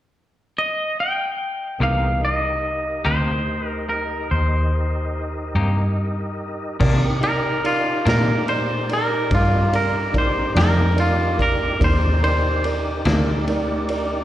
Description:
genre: slow blues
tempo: 48 BPM (dotted quarters)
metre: 12/8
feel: straight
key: C minor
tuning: A4 = 440 Hz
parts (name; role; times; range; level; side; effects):
- twangy electric guitar; melody; 0.6-12.6 s; F4 to G5; -22 LUFS; equal; slapback echo, tape echo
- dark concert grand piano; accompaniment; 1.8-14.2 s; Eb4 to D6; -28 LUFS; right 3 dB; slapback echo
- semi-hollow electric guitar; accompaniment; 1.8-13.3 s; C3 to G4; -26 LUFS; left 4 dB; tremolo, slapback echo
- tonewheel organ; sustained chords; 1.8-14.2 s; E3 to Eb5; -28 LUFS; equal; slow rotary speaker, overdrive, chorus vibrato
- vintage muted fingered electric bass; bass; 1.8-14.2 s; C2 to C3; -22 LUFS; equal; none
- raw garage drum kit; drums; 6.8-14.1 s; crash cymbal, kick drum, ride cymbal, snare drum; -25 LUFS; equal; none
room: studio reverb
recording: live gig heard through the venue's PA, recital hall reverb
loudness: -18 LUFS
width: side -13 dB against mid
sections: 0.0-1.8 A section; 1.8-6.8 B section; 6.8-14.2 C section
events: clean electric guitar solo 6.8-14.2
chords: 0.0 N.C.; 1.8 Cm7; 6.8 Cm9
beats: 0.56 | 1.81 3.06 4.32 5.57 | 6.82 8.07 9.31 10.56 | 11.81 13.06

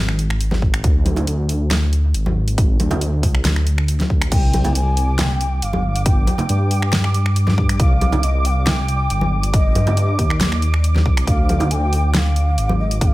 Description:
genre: deep dubstep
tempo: 138 BPM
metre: 4/4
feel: half-time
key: C minor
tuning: A4 = 442 Hz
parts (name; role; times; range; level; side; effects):
- dark detuned saw bass; bass; 0.0-13.1 s; G1 to G2; -18 LUFS; equal; none
- deep house drum kit; drums; 0.1-13.1 s; crash cymbal, finger snaps, hi-hat, snare drum; -24 LUFS; equal; overdrive, studio ambience
- congas; percussion; 0.5-12.8 s; none; -25 LUFS; equal; dub echo
- electronic kick drum; drums; 0.6-13.1 s; none; -17 LUFS; equal; studio ambience
- breathy mellow low ney; melody; 4.3-13.1 s; Eb5 to Ab5; -26 LUFS; left 1 dB; dub echo
- flickering grainy texture; texture; 4.9-13.1 s; D6; -28 LUFS; right 2 dB; built-in reverb
room: digital ambience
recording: none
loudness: -15 LUFS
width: side -18 dB against mid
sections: 0.0-13.1 A section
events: none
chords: 0.0 N.C.; 4.3 Cmadd9; 11.3 Ddim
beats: 0.41 | 0.84 1.27 1.71 2.15 | 2.58 3.01 3.45 3.88 | 4.32 4.75 5.19 5.62 | 6.06 6.49 6.93 7.36 | 7.80 8.23 8.67 9.10 | 9.54 9.97 10.41 10.84 | 11.28 11.71 12.14 12.58 | 13.01

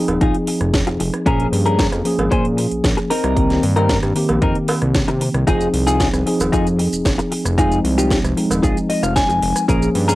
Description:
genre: nu-disco, nu disco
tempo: 114 BPM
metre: 4/4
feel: straight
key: F minor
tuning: A4 = 440 Hz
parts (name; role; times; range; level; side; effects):
- mellow tine electric piano; accompaniment; 0.0-10.2 s; Eb3 to Ab4; -20 LUFS; equal; auto-pan, cassette tape, analog delay
- fat analog bass; bass; 0.1-10.2 s; Eb1 to C3; -20 LUFS; equal; none
- house drum kit; drums; 0.1-10.2 s; hi-hat, rim click, shaker, snare drum; -24 LUFS; equal; cassette tape
- cowbell; percussion; 0.1-8.6 s; none; -24 LUFS; right 2 dB; none
- clean electric guitar; riff; 0.2-10.2 s; C4 to Ab5; -20 LUFS; left 2 dB; lush chorus, cassette tape, analog delay
- electronic kick drum; drums; 0.2-9.8 s; none; -20 LUFS; equal; cassette tape
room: light reverb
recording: home recording on cassette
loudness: -15 LUFS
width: side -17 dB against mid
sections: 0.0-10.2 A section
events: clean electric guitar fill 8.6-9.7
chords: 0.0 Fm7; 1.3 Bbm7; 3.1 Cm7; 5.5 Fm7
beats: 0.21 0.74 | 1.26 1.79 2.32 2.84 | 3.37 3.90 4.42 4.95 | 5.48 6.00 6.53 7.05 | 7.58 8.11 8.63 9.16 | 9.69

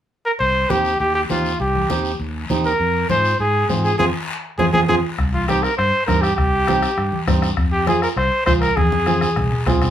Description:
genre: latin, cumbia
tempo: 201 BPM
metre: 4/4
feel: straight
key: C minor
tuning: A4 = 440 Hz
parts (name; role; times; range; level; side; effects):
- clear trumpet; melody; 0.3-9.7 s; F4 to C5; -19 LUFS; equal; none
- fingered electric bass; bass; 0.4-9.9 s; C2 to Ab2; -23 LUFS; left 1 dB; none
- congas; percussion; 0.4-9.9 s; none; -24 LUFS; left 2 dB; none
- guiro; percussion; 0.4-9.9 s; none; -32 LUFS; left 4 dB; none
- flamenco guitar; accompaniment; 0.7-9.9 s; C4 to Ab4; -23 LUFS; right 4 dB; none
- bombo; percussion; 5.2-9.9 s; none; -22 LUFS; left 1 dB; none
room: wet studio ambience, RT60 0.5 s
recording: band playing live in one room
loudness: -16 LUFS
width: side -10 dB against mid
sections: 0.4-5.2 A section; 5.2-9.9 B section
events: band accent 4.0-5.2; drum fill 4.6-5.2, 8.8-9.9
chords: 0.4 Cm; 2.8 Fm; 5.2 Cm; 7.6 Fm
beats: 0.10 | 0.40 0.70 1.00 1.30 | 1.60 1.90 2.20 2.50 | 2.80 3.10 3.39 3.69 | 3.99 4.29 4.59 4.89 | 5.19 5.49 5.78 6.08 | 6.38 6.68 6.98 7.28 | 7.58 7.87 8.17 8.47 | 8.77 9.07 9.37 9.67

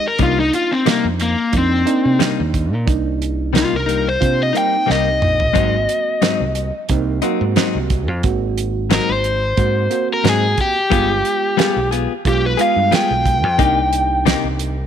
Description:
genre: straight-eighth soul blues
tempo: 90 BPM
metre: 4/4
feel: swing 54% on 16ths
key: C minor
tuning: A4 = 439 Hz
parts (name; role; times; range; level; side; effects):
- crunchy overdriven guitar; melody; 0.0-14.2 s; Bb3 to G5; -18 LUFS; left 2 dB; none
- overdriven reed electric piano; accompaniment; 0.0-14.7 s; Ab3 to Gb4; -24 LUFS; right 12 dB; none
- direct-recorded clean electric guitar; stabs; 0.2-14.5 s; Ab2 to Ab4; -22 LUFS; left 11 dB; none
- fingered electric bass; bass; 0.2-14.9 s; G1 to C3; -21 LUFS; equal; none
- damped 70s drum kit; drums; 0.2-14.8 s; hi-hat, kick drum, snare drum, toms; -20 LUFS; right 3 dB; none
room: light reverb, small room ambience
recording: 1960s-style stereo with parts hard left and right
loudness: -14 LUFS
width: side -9 dB against mid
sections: 0.0-14.9 A section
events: overdriven electric guitar solo 0.0-14.9; drum fill 4.9-5.6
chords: 0.2 Cm7; 5.6 Ab7; 10.9 G7b9; 13.6 Cm7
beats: | 0.20 0.87 1.54 2.21 | 2.88 3.55 4.22 4.89 | 5.56 6.22 6.89 7.56 | 8.23 8.90 9.57 10.24 | 10.91 11.58 12.25 12.91 | 13.58 14.25

